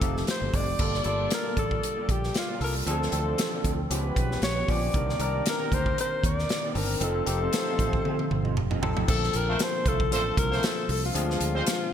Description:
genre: polished 1980s jazz-funk pop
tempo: 116 BPM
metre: 4/4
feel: swing 54% on 16ths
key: Bb major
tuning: A4 = 439 Hz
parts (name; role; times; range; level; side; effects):
- breathy alto saxophone; melody; 0.0-11.9 s; F4 to D5; -30 LUFS; left 2 dB; none
- barky tine electric piano; accompaniment; 0.0-11.9 s; Eb3 to Bb4; -33 LUFS; left 2 dB; overdrive, analog chorus
- mellow electric guitar; riff; 0.0-9.0 s; Bb3 to F5; -36 LUFS; right 2 dB; ensemble chorus
- fingered electric bass; bass; 0.0-11.6 s; F1 to Eb2; -30 LUFS; right 1 dB; none
- modern studio drum kit; drums; 0.0-11.8 s; crash cymbal, hi-hat, kick drum, snare drum, toms; -28 LUFS; equal; gated reverb
- dark horn section; second line; 0.8-11.6 s; G3 to D5; -36 LUFS; right 2 dB; none
room: light reverb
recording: bright 1980s-style digital production, faint mains hum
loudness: -24 LUFS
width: side -9 dB against mid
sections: 0.8-9.1 A section; 9.1-11.9 B section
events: drum fill 8.0-9.1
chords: 0.0 F9; 0.8 Gm9; 2.9 Dm7; 3.9 Db7#11; 4.9 Cm9; 7.0 F7; 9.1 Bbmaj9; 11.2 Dm7b5

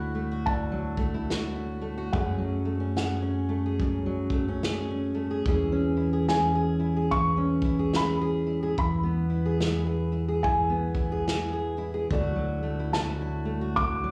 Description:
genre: acoustic folk duo or small band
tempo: 72 BPM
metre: 4/4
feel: swing 61% on 8ths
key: F# minor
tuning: A4 = 440 Hz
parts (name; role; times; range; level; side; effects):
- felt-muted upright piano; melody; 0.0-14.1 s; F#5 to D6; -33 LUFS; equal; slapback echo
- fingerpicked steel-string acoustic guitar; accompaniment; 0.0-14.1 s; F#2 to G#4; -31 LUFS; equal; slapback echo
- fingered electric bass; bass; 0.0-14.1 s; D2 to F#2; -33 LUFS; equal; none
- natural country drum kit; drums; 0.5-14.0 s; kick drum, snare drum; -33 LUFS; equal; none
room: light reverb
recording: live gig heard through the venue's PA, club reverb, studio ambience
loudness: -27 LUFS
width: mono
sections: 0.0-14.1 A section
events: none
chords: 0.0 Dadd9; 2.1 F#madd9; 5.5 C#m7/E; 8.8 E; 12.1 Dadd9

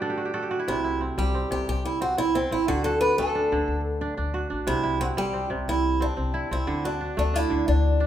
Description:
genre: west african traditional, West African string and xylophone music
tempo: 120 BPM (dotted quarters)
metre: 12/8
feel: straight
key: D mixolydian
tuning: A4 = 440 Hz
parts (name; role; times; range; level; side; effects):
- kora; arpeggios; 0.0-8.1 s; C3 to E5; -29 LUFS; right 2 dB; none
- picked old ladder-braced acoustic guitar; melody; 0.7-8.1 s; C4 to B4; -25 LUFS; right 1 dB; none
- upright bass; bass; 0.7-8.1 s; A1 to D2; -28 LUFS; left 1 dB; none
room: moderate recital hall reverb, RT60 1.3 s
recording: minimal, uncompressed stereo recording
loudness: -23 LUFS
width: side -11 dB against mid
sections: 0.0-8.1 A section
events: kora fill 0.0-0.7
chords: 0.0 D; 0.7 C; 2.7 D; 4.7 C; 6.7 D

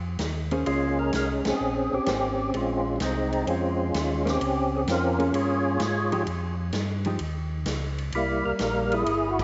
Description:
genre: soul jazz organ trio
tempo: 128 BPM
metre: 4/4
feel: swing 69% on 8ths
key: unclear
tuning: A4 = 440 Hz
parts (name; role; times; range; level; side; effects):
- mellow tonewheel organ; bass; 0.0-9.4 s; G1 to Ab2; -33 LUFS; equal; overdrive, chorus vibrato, slow rotary speaker
- swinging big-band drum kit; drums; 0.2-9.4 s; crash cymbal, hi-hat, kick drum, ride cymbal, snare drum; -37 LUFS; equal; none
- hollow-body jazz guitar; accompaniment; 0.5-7.2 s; F3 to C5; -33 LUFS; equal; none
- percussive tonewheel organ; melody; 0.7-9.4 s; G3 to Db5; -28 LUFS; equal; slow rotary speaker, overdrive, chorus vibrato, tape echo
room: moderate echo chamber reverb, RT60 2.2 s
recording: nothing above 7.8 kHz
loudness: -26 LUFS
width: mono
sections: 0.0-9.4 A section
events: band accent 1.4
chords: 0.0 Fm7; 0.7 Bbm9; 6.3 F7sus2; 8.1 C7

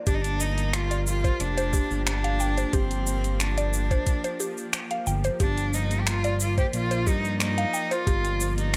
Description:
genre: organic downtempo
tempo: 90 BPM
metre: 4/4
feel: straight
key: G minor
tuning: A4 = 440 Hz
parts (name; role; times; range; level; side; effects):
- bowed-like drone; sustained chords; 0.0-8.8 s; F3 to D5; -38 LUFS; equal; built-in reverb, sidechain pumping
- mallet-like synth pluck; arpeggios; 0.0-8.7 s; G4 to G5; -34 LUFS; equal; chorus, digital delay
- rich cello; melody; 0.1-8.8 s; C4 to G4; -32 LUFS; equal; digital delay
- smooth synth bass; bass; 0.1-8.8 s; F1 to G2; -30 LUFS; equal; none
- deep house drum kit; drums; 0.1-8.8 s; cabasa, finger snaps, hi-hat; -33 LUFS; equal; overdrive
- electronic kick drum; drums; 0.1-8.2 s; none; -27 LUFS; equal; none
room: little or no reverb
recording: none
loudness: -26 LUFS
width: mono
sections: 0.1-8.8 A section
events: none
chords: 0.1 Gm7

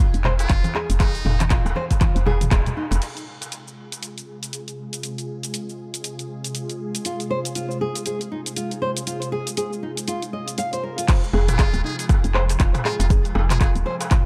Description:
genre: afro house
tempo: 119 BPM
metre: 4/4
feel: swing 59% on 16ths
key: F minor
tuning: A4 = 440 Hz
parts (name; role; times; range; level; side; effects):
- nylon-string guitar; arpeggios; 0.0-2.8, 7.1-14.3 s; Eb4 to F5; -31 LUFS; equal; sidechain pumping, analog delay
- house drum kit; drums; 0.0-14.2 s; cabasa, crash cymbal, handclaps, hi-hat, toms; -30 LUFS; equal; tape echo
- woody FM bass; bass; 0.1-3.0, 11.3-13.8 s; Eb1 to F1; -24 LUFS; equal; sidechain pumping
- congas; percussion; 0.2-2.7 s; none; -31 LUFS; equal; none
- trumpet with metal mute; melody; 0.4-1.5, 11.5-13.7 s; Eb4 to Ab4; -36 LUFS; equal; analog delay
- darbuka; percussion; 0.4-3.0, 11.1-14.1 s; none; -36 LUFS; equal; tape echo
- electronic kick drum; drums; 0.5-2.6, 11.1-14.2 s; none; -20 LUFS; equal; none
- ethereal airy pad; sustained chords; 3.4-14.3 s; C3 to Ab4; -34 LUFS; equal; ensemble chorus, built-in reverb, sidechain pumping
room: light reverb, studio reverb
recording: echo-heavy mix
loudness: -22 LUFS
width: mono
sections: 0.0-3.0 A section; 3.0-11.1 B section; 11.1-14.3 C section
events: band accent 2.5; filter sweep on ambient pad 3.0-11.1; drop 11.1-14.3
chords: 0.0 Fm

